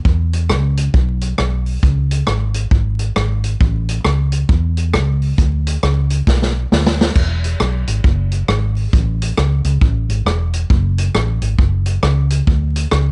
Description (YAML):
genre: ska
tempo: 135 BPM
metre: 4/4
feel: swing 62% on 8ths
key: E mixolydian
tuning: A4 = 442 Hz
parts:
  - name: vintage muted fingered electric bass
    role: bass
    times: 0.1-13.1 s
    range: E1 to E2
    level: -18 LUFS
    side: equal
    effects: none
  - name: vintage drum kit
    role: drums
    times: 0.1-13.0 s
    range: crash cymbal, hi-hat, kick drum, rim click, snare drum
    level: -19 LUFS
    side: equal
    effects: none
room: little or no reverb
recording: vinyl crackle, nothing above 10.7 kHz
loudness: -16 LUFS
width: mono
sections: 0.0-7.2 A section; 7.2-13.1 B section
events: drum fill 6.3-7.2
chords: none